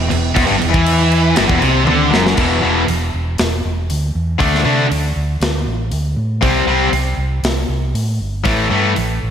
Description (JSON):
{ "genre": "hard rock", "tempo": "119 BPM", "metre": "4/4", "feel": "straight", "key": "E minor", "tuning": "A4 = 440 Hz", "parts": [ { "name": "cranked stack guitar", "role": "riff", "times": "0.0-8.9 s", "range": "E2 to D4", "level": "-18 LUFS", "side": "left 7 dB", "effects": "overdrive, slapback echo" }, { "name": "scooped high-gain guitar", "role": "riff", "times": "0.0-8.9 s", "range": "E2 to D4", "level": "-19 LUFS", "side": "right 8 dB", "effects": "distortion, slapback echo" }, { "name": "hollow-body short-scale fingered electric bass", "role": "bass", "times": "0.0-9.3 s", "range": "E1 to C3", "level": "-18 LUFS", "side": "right 1 dB", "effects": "none" }, { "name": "tight metal drum kit", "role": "drums", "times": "0.1-9.1 s", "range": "crash cymbal, hi-hat, kick drum, snare drum, toms", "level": "-20 LUFS", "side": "equal", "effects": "none" } ], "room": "moderate lush hall reverb, RT60 2.0 s", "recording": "big arena sound", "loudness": "-13 LUFS", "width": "side -8 dB against mid", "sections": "0.0-2.4 A section; 2.4-9.3 B section", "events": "drum fill 1.9-2.4", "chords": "0.0 Em; 2.4 E5; 4.4 D5; 6.4 C5; 8.5 A5" }